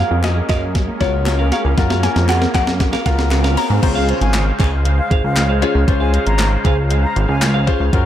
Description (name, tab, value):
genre	dance-pop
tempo	117 BPM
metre	4/4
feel	straight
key	Db major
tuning	A4 = 439 Hz
part	mallet-like synth pluck	melody	0.0-3.8 s	Db5 to Bb5	-24 LUFS	left 2 dB	chorus, low-pass filter, dub echo
part	clear grand piano	accompaniment	0.0-8.1 s	Db4 to Db5	-24 LUFS	left 5 dB	sidechain pumping, low-pass filter, dub echo
part	filtered supersaw swell	sustained chords	0.0-8.1 s	Db3 to F5	-25 LUFS	equal	sidechain pumping, low-pass filter
part	clean electric guitar	riff	0.0-8.0 s	Gb4 to F5	-26 LUFS	right 3 dB	wide subtle chorus, low-pass filter, dub echo
part	chorused synth bass	bass	0.0-8.1 s	Ab1 to Ab2	-17 LUFS	equal	sidechain pumping
part	riser	sound effects	0.1-3.8 s	none	-28 LUFS	right 2 dB	none
part	wide unison pluck	arpeggios	0.1-3.8 s	Gb3 to F5	-30 LUFS	right 1 dB	none
part	crisp 8-bit digital drum machine	drums	0.2-8.1 s	crash cymbal, handclaps, hi-hat, kick drum, snare drum	-19 LUFS	equal	overdrive, dub echo
part	group handclap	percussion	0.2-7.5 s	none	-30 LUFS	left 3 dB	dub echo
part	silver concert flute	melody	4.0-7.5 s	F5 to Bb5	-26 LUFS	left 2 dB	sidechain pumping, dub echo
room	light reverb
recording	echo-heavy mix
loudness	-14 LUFS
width	side -11 dB against mid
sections	0.0-3.8 A section; 3.8-8.1 B section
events	build-up 0.0-3.8; drum fill 0.0-3.8; drop 3.8-8.1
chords	0.0 Gbmaj7; 3.8 Dbmaj7